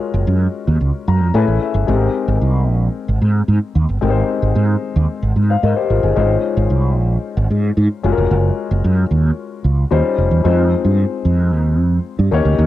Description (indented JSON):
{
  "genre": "polished 1980s jazz-funk pop",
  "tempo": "112 BPM",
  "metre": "4/4",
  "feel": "straight",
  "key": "unclear",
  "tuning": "A4 = 440 Hz",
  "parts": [
    { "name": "warm grand piano", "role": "accompaniment", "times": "0.0-12.7 s", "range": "G3 to Bb5", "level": "-20 LUFS", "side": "left 6 dB", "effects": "wide subtle chorus, cassette tape" },
    { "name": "mellow fretless electric bass", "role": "bass", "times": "0.1-12.7 s", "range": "F1 to A2", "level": "-14 LUFS", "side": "right 1 dB", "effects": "ensemble chorus" }
  ],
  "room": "moderate studio reverb, RT60 0.6 s",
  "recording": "home recording on cassette",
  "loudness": "-14 LUFS",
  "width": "side -14 dB against mid",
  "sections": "0.0-10.5 A section; 10.5-12.7 B section",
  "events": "grand piano fill 0.8-1.9",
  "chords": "0.0 Gbmaj9; 1.3 Amaj9; 1.9 Abmaj9; 6.2 Dbmaj9/Ab; 8.0 Gbmaj9; 9.9 Eb13; 10.5 Fm7"
}